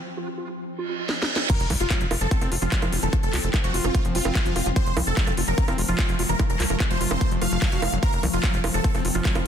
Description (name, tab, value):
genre	psychedelic trance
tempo	147 BPM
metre	4/4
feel	straight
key	F major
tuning	A4 = 440 Hz
part	vowel-sweep wobble bass	second line	0.2-9.3 s	C4 to F4	-37 LUFS	right 4 dB	ensemble chorus, sidechain pumping, high-pass filter, tape echo
part	reverse cymbal and impact	sound effects	0.8-3.1 s	none	-30 LUFS	right 2 dB	none
part	drum and bass drum kit	drums	1.1-9.4 s	bongos, crash cymbal, handclaps, hi-hat, snare drum	-28 LUFS	right 1 dB	small room reverb
part	dense compressed supersaw	melody	1.5-9.4 s	F4 to F5	-29 LUFS	right 1 dB	phaser, sidechain pumping, tape echo
part	swarming drone	sustained chords	2.3-9.5 s	F3 to C4	-31 LUFS	left 2 dB	built-in reverb, sidechain pumping
part	screaming distorted acid line	riff	1.5-9.4 s	E3 to Gb4	-32 LUFS	equal	distortion, chorus, auto-pan, sidechain pumping, tape echo
part	electronic kick drum	drums	1.5-9.3 s	none	-24 LUFS	equal	small room reverb
part	tight sequencer bass	bass	1.6-9.4 s	F1 to C2	-27 LUFS	equal	none
room	digital ambience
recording	dense, heavily limited modern master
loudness	-21 LUFS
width	side -8 dB against mid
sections	0.0-1.5 A section; 1.5-9.5 B section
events	break 0.0-1.5; reverse cymbal 0.8-1.5; drum fill 1.1-1.5; drop 1.5-9.5; impact 1.5-3.1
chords	0.0 F5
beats	0.27 0.68 1.09 | 1.50 1.91 2.31 2.72 | 3.13 3.54 3.95 4.35 | 4.76 5.17 5.58 5.99 | 6.39 6.80 7.21 7.62 | 8.03 8.44 8.84 9.25